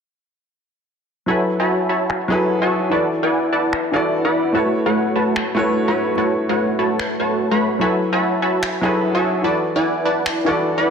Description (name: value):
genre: future bass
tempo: 147 BPM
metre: 4/4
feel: swing 55% on 16ths, half-time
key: A major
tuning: A4 = 438 Hz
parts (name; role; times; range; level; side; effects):
- warm baby grand piano; accompaniment; 1.3-10.9 s; E3 to D5; -21 LUFS; equal; digital delay
- supersaw stab; riff; 1.3-10.9 s; A3 to C#6; -18 LUFS; equal; low-pass filter, digital delay
- electronic finger snaps; drums; 2.1-10.3 s; none; -26 LUFS; equal; low-pass filter on snare, studio reverb
room: moderate lush hall reverb, RT60 2.2 s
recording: none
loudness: -16 LUFS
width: side -6 dB against mid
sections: 1.3-10.9 A section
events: filter sweep on drum 1.3-10.9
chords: 1.3 F#m11; 2.9 E9sus4; 4.5 A6; 7.8 F#m11; 9.4 E9sus4